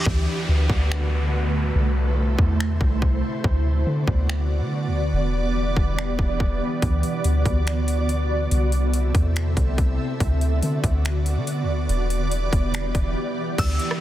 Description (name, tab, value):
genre	hip hop, atmospheric cloud-rap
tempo	142 BPM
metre	4/4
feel	half-time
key	D mixolydian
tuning	A4 = 438 Hz
part	ethereal airy pad	sustained chords	0.0-14.0 s	C3 to E5	-26 LUFS	right 1 dB	ensemble chorus, built-in reverb, tremolo, sidechain pumping
part	reverse cymbal and downlifter	sound effects	0.0-3.4, 13.6-14.0 s	none	-32 LUFS	equal	none
part	wind-like tuned noise texture	texture	0.0-14.0 s	G3 to D5	-38 LUFS	right 1 dB	built-in reverb
part	soft 808-style bass	bass	0.1-13.8 s	E1 to D3	-22 LUFS	equal	none
part	trap drum kit	drums	0.1-14.0 s	crash cymbal, finger snaps, hi-hat, kick drum, rim click	-24 LUFS	equal	overdrive, soft clipping on snare
part	glassy synth bell	melody	13.6-14.0 s	E6	-30 LUFS	equal	chorus, phaser
room	little or no reverb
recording	dense, heavily limited modern master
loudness	-20 LUFS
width	side -13 dB against mid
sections	0.1-13.6 A section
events	break 0.1-6.8, 13.2-13.6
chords	0.1 D6; 1.8 C6; 3.4 D6; 5.1 Em7; 6.8 D6; 8.5 C6; 10.2 D6; 11.9 Em7